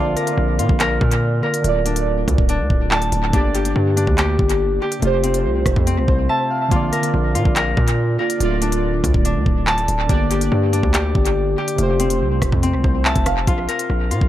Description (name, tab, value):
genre	hip hop, drill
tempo	142 BPM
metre	4/4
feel	half-time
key	unclear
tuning	A4 = 440 Hz
part	warbly lo-fi synth keys	accompaniment	0.0-13.5 s	C3 to F5	-23 LUFS	right 3 dB	chorus, phaser, tape echo
part	Celtic harp	arpeggios	0.0-14.3 s	C4 to A5	-22 LUFS	left 3 dB	tape echo
part	distorted 808-style bass	bass	0.0-14.3 s	D1 to Bb2	-20 LUFS	equal	distortion
part	drill drum kit	drums	0.2-14.3 s	handclaps, hi-hat, kick drum, rim click	-20 LUFS	equal	tape echo
room	digital ambience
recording	echo-heavy mix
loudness	-16 LUFS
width	side -13 dB against mid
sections	0.0-13.5 A section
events	drums muted 6.3-6.7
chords	0.0 Bb; 1.6 Dm; 3.3 Gm; 5.0 F; 6.7 Bb; 8.4 Dm; 10.1 Gm; 11.8 F; 13.5 Bb5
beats	0.38 0.80 1.22 | 1.64 2.07 2.49 2.91 | 3.33 3.76 4.18 4.60 | 5.02 5.45 5.87 6.29 | 6.71 7.14 7.56 7.98 | 8.40 8.83 9.25 9.67 | 10.09 10.52 10.94 11.36 | 11.78 12.21 12.63 13.05 | 13.47 13.90